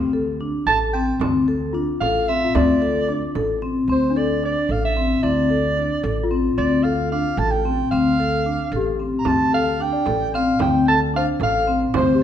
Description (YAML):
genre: contemporary instrumental, chamber music in an uneven meter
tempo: 224 BPM (eighths)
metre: 5/8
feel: straight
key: D minor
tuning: A4 = 440 Hz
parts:
  - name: vibraphone with medium mallets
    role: arpeggios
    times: 0.0-12.2 s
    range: C4 to A4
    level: -21 LUFS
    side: left 3 dB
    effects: none
  - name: upright bass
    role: bass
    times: 0.0-12.2 s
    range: A1 to D2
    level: -26 LUFS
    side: right 2 dB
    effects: none
  - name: celesta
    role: texture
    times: 0.0-12.2 s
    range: D4 to D5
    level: -30 LUFS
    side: left 9 dB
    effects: none
  - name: mellow soprano saxophone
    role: melody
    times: 0.7-12.2 s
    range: C5 to Bb5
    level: -22 LUFS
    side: right 2 dB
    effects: none
  - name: frame drum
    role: percussion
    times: 0.7-3.8, 9.3-12.2 s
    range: none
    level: -29 LUFS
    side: right 6 dB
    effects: none
room: moderate concert hall reverb, RT60 1.8 s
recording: minimal, uncompressed stereo recording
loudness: -18 LUFS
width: side -9 dB against mid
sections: 0.0-3.9 A section; 3.9-12.2 B section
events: none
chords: 0.0 Dm11